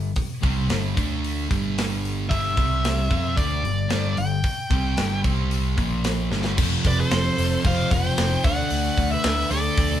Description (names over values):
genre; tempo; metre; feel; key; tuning
hard rock; 112 BPM; 4/4; straight; unclear; A4 = 440 Hz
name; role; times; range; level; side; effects
sludgy distorted guitar; riff; 0.0-10.0 s; F2 to F4; -30 LUFS; left 5 dB; overdrive
sludgy distorted guitar; riff; 0.0-10.0 s; F2 to F4; -27 LUFS; right 3 dB; overdrive
picked electric bass; bass; 0.0-9.9 s; F1 to F2; -26 LUFS; equal; none
tight metal drum kit; drums; 0.2-9.9 s; crash cymbal, hi-hat, kick drum, snare drum; -25 LUFS; equal; none
high-gain lead guitar; melody; 2.3-10.0 s; C5 to G5; -26 LUFS; equal; distortion
bluesy overdriven lead guitar; second line; 6.9-10.0 s; A4 to D5; -30 LUFS; right 2 dB; distortion
room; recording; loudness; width
moderate stone room reverb, RT60 1.3 s; band playing live in one room; -20 LUFS; side -11 dB against mid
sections
0.0-6.6 A section; 6.6-10.0 B section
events
drum fill 6.3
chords
0.0 G5; 1.0 D5; 1.5 G5; 2.6 C5; 3.1 G5; 5.2 C5; 5.8 Bb5; 6.3 G5; 6.6 F; 8.4 D